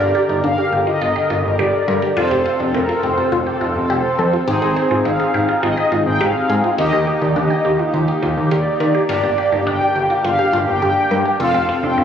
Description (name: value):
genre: pop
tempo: 104 BPM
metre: 4/4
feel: straight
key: G minor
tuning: A4 = 440 Hz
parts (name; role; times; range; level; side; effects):
- mellow synth brass; melody; 0.0-12.0 s; Bb4 to G5; -19 LUFS; equal; chorus, analog delay
- analog synth brass; accompaniment; 0.0-12.0 s; D3 to Bb4; -21 LUFS; equal; chorus
- resonant blip pluck; arpeggios; 0.0-12.0 s; C4 to Bb4; -22 LUFS; right 1 dB; phaser, analog delay
- fat analog bass; bass; 0.0-12.0 s; F1 to Eb3; -21 LUFS; equal; none
room: moderate lush hall reverb, RT60 2.7 s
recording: recorded on a phone in the room, club reverb, compression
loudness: -15 LUFS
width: side -8 dB against mid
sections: 0.0-12.0 A section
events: none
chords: 0.0 Gm; 2.2 F; 4.5 Ab; 6.8 Eb; 9.1 Gm; 11.4 F